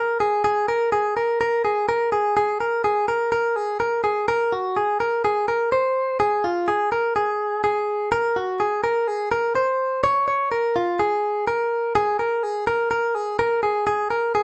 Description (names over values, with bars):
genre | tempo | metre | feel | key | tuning
indie pop | 125 BPM | 4/4 | straight | unclear | A4 = 441 Hz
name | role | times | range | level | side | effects
direct-recorded clean electric guitar | solo | 0.0-14.4 s | F4 to Db5 | -22 LUFS | equal | none
room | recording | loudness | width
wet studio reverb, RT60 0.6 s | band playing live in one room | -22 LUFS | mono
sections
0.0-4.3 A section; 4.3-12.0 B section; 12.0-14.4 A section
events
none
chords
none